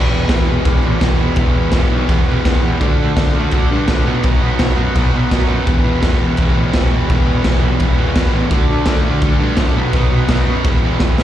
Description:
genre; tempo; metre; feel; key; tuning
garage rock duo or trio; 168 BPM; 4/4; straight; E minor; A4 = 439 Hz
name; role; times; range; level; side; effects
overdriven combo organ; sustained chords; 0.0-11.2 s; F#4 to F#5; -27 LUFS; equal; spring reverb
fuzz guitar; riff; 0.0-11.2 s; E2 to D4; -18 LUFS; equal; distortion, slapback echo
fuzz picked electric bass; bass; 0.0-11.2 s; E1 to D3; -20 LUFS; equal; overdrive
raw garage drum kit; drums; 0.3-11.2 s; crash cymbal, kick drum, snare drum; -15 LUFS; equal; none
room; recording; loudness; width
studio reverb; live gig heard through the venue's PA, club reverb; -13 LUFS; side -12 dB against mid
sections
0.0-11.2 A section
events
drum fill 11.0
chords
0.0 Em; 2.8 D; 4.1 B; 5.7 Em; 8.5 D; 9.8 B; 10.6 Em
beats
0.30 0.66 1.02 | 1.38 1.74 2.10 2.46 | 2.81 3.17 3.53 3.89 | 4.25 4.60 4.96 5.32 | 5.67 6.03 6.39 6.74 | 7.10 7.45 7.81 8.16 | 8.52 8.88 9.23 9.58 | 9.94 10.29 10.65 11.00

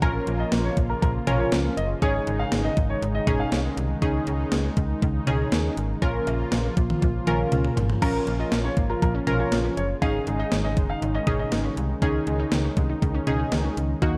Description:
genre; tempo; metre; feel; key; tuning
synth-pop; 120 BPM; 4/4; straight; Bb minor; A4 = 441 Hz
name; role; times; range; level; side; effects
warm baby grand piano; second line; 0.0-3.6, 8.0-11.6 s; Bb4 to F5; -33 LUFS; equal; slapback echo
funky polysynth comp; accompaniment; 0.0-14.2 s; Bb3 to Bb4; -31 LUFS; equal; chorus
brassy analog pad; sustained chords; 0.0-14.2 s; Db3 to Gb4; -33 LUFS; equal; chorus, tremolo
slap-like FM bass; bass; 0.0-14.2 s; Gb1 to Eb2; -30 LUFS; equal; none
gated 80s digital drum machine; drums; 0.0-14.1 s; cowbell, crash cymbal, hi-hat, kick drum, snare drum, toms; -28 LUFS; equal; gated reverb, gated reverb snare, overdrive
analog pluck; arpeggios; 8.0-14.1 s; Eb3 to F4; -35 LUFS; equal; chorus, slapback echo
room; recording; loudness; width
light reverb, digital ambience; dark, warm production; -24 LUFS; mono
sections
0.0-8.0 A section; 8.0-14.2 B section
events
drum fill 7.0-8.0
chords
0.0 Bbm; 2.0 Absus4; 4.0 Dbsus2; 6.0 Bbm; 10.0 Absus4; 12.0 Dbsus2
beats
| 0.02 0.52 1.02 1.52 | 2.02 2.52 3.02 3.52 | 4.02 4.52 5.02 5.52 | 6.02 6.52 7.02 7.52 | 8.02 8.52 9.02 9.52 | 10.02 10.52 11.02 11.52 | 12.02 12.52 13.02 13.52 | 14.02

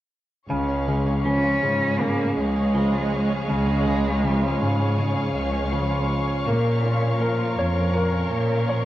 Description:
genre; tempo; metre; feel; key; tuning
pop; 81 BPM; 4/4; straight; Db major; A4 = 440 Hz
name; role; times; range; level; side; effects
clear upright piano; accompaniment; 0.5-8.8 s; Db3 to Db5; -26 LUFS; left 1 dB; none
warm studio string section; sustained chords; 0.5-8.8 s; Ab4 to Db6; -30 LUFS; left 2 dB; none
direct-recorded clean electric guitar; arpeggios; 0.5-8.8 s; Bb2 to F4; -30 LUFS; right 4 dB; ping-pong delay
dark symphonic cello section; bass; 0.5-8.8 s; Db2 to Bb2; -24 LUFS; equal; none
warm cello; melody; 1.3-4.9 s; Ab3 to Db4; -24 LUFS; right 1 dB; none
room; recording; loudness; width
moderate lush hall reverb, RT60 1.9 s, studio reverb; worn, warbling old tape, cassette tape, warbly pitch drift; -20 LUFS; side -14 dB against mid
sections
0.5-8.8 A section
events
none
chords
0.5 Db; 6.5 Bbm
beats
| 0.49 1.25 2.00 2.75 | 3.49 4.24 4.98 5.72 | 6.46 7.20 7.94 8.68

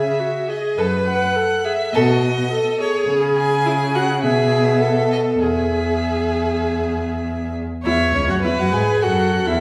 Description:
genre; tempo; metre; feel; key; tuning
quick classical-period movement for string quartet; 103 BPM; 4/4; rubato; E major; A4 = 445 Hz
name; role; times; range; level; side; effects
rich violin; melody; 0.0-9.6 s; C#5 to G#5; -26 LUFS; equal; none
clear viola; accompaniment; 0.0-9.6 s; C#4 to B4; -24 LUFS; equal; none
clear cello; bass; 0.0-9.6 s; C#2 to C#3; -24 LUFS; equal; none
rich violin; second line; 0.8-9.6 s; G#4 to C#5; -27 LUFS; equal; none
room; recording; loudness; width
wet recital hall reverb, RT60 1.5 s; heard from further back in the room; -19 LUFS; mono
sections
0.0-7.9 A section; 7.9-9.6 B section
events
none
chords
0.0 C#m; 0.8 F#m; 1.9 B7; 3.1 C#5; 4.2 E/B; 4.8 B7(no3); 5.4 E; 7.9 A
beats
0.20 | 0.78 1.36 1.94 2.51 | 3.08 3.65 4.23 4.82 | 5.42 6.03 6.64 7.25 | 7.85 8.44 9.03

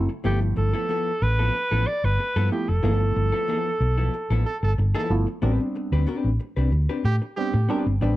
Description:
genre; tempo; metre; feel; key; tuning
funk; 93 BPM; 4/4; straight; A minor; A4 = 441 Hz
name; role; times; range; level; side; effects
barky reed electric piano; stabs; 0.0-8.2 s; F3 to E4; -28 LUFS; right 2 dB; overdrive, phaser
hollow-body short-scale fingered electric bass; bass; 0.0-8.2 s; F1 to A2; -21 LUFS; equal; none
vintage hollow-body jazz guitar; accompaniment; 0.1-8.2 s; F3 to B4; -30 LUFS; left 4 dB; none
breathy alto saxophone; melody; 0.3-4.8 s; G4 to D5; -26 LUFS; right 1 dB; none
brilliant trombone; second line; 4.5-7.8 s; G4 to A4; -30 LUFS; right 4 dB; none
room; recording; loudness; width
light reverb, small room reverb; dark, warm production; -21 LUFS; side -16 dB against mid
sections
0.0-5.4 A section; 5.4-8.2 B section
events
band accent 2.8-5.4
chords
0.2 G13; 5.4 Am11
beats
| 0.25 0.89 1.54 2.19 | 2.84 3.49 4.13 4.78 | 5.43 6.08 6.72 7.37 | 8.02

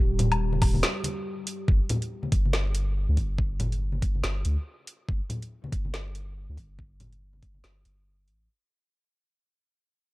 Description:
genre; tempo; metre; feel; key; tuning
deep dubstep; 141 BPM; 4/4; swing 59% on 16ths, half-time; unclear; A4 = 436 Hz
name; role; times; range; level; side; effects
deep dark ambient pad; sustained chords; 0.0-1.7 s; G3 to G4; -36 LUFS; equal; chorus, built-in reverb
soft dub sub bass; bass; 0.0-8.5 s; Eb1 to D2; -27 LUFS; equal; none
garage drum kit; drums; 0.2-8.4 s; hi-hat, snare drum, woodblock; -31 LUFS; equal; overdrive
congas; percussion; 0.2-7.6 s; none; -31 LUFS; left 1 dB; none
electronic kick drum; drums; 0.6-7.5 s; none; -25 LUFS; equal; overdrive
room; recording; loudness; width
little or no reverb; dark, warm production; -25 LUFS; side -20 dB against mid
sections
0.0-1.7 A section; 1.7-8.5 B section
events
drop 0.0-1.7; break 0.8-1.7; fade-out 1.7-8.5; filter sweep on sub bass 1.7-8.5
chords
0.0 Eb; 1.7 N.C.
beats
0.41 0.83 1.26 | 1.68 2.11 2.53 2.96 | 3.38 3.81 4.24 4.66 | 5.09 5.51 5.94 6.36 | 6.79 7.21 7.64 8.06

